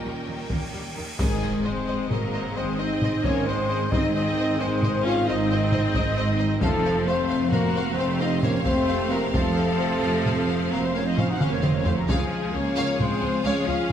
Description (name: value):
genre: cinematic, epic orchestral film score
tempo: 88 BPM (dotted quarters)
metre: 12/8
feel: straight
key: Ab major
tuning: A4 = 440 Hz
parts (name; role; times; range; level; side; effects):
- rich symphonic violin section; melody; 0.0-13.9 s; Ab4 to Gb5; -33 LUFS; left 3 dB; none
- warm symphonic violin section; second line; 0.0-13.9 s; F4 to F5; -35 LUFS; left 2 dB; none
- clear symphonic viola section; accompaniment; 0.0-13.9 s; Eb3 to Gb4; -32 LUFS; equal; none
- mellow French horn section; sustained chords; 0.0-13.9 s; Ab3 to Gb4; -29 LUFS; left 2 dB; none
- rich symphonic string section; sustained chords; 0.0-13.9 s; Ab3 to G5; -32 LUFS; equal; none
- warm trombone section; sustained chords; 0.0-13.9 s; Bb2 to C4; -33 LUFS; right 3 dB; none
- rich studio cello section; bass; 0.0-13.9 s; Db2 to Eb3; -30 LUFS; right 2 dB; none
- rich symphonic double bass section; bass; 0.0-13.8 s; F1 to Eb2; -31 LUFS; right 3 dB; none
- cymbal swell and impact; sound effects; 0.4-3.9 s; none; -36 LUFS; equal; none
- solo taiko drums; drums; 0.5-13.9 s; none; -28 LUFS; equal; none
- silver concert flute; second line; 1.2-13.9 s; Ab4 to Gb5; -31 LUFS; left 2 dB; none
room: moderate scoring stage reverb, RT60 1.9 s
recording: none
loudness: -21 LUFS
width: side -9 dB against mid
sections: 0.0-1.2 A section; 1.2-13.9 B section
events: cymbal swell 0.4-1.2; impact 1.2-3.9; drum fill 11.4-12.1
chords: 0.0 Eb7; 1.2 Ab; 6.6 F; 12.1 Db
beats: 0.50 | 1.20 1.88 2.56 3.24 | 3.92 4.60 5.28 5.95 | 6.62 7.29 7.97 8.65 | 9.34 10.03 10.72 11.40 | 12.09 12.77 13.45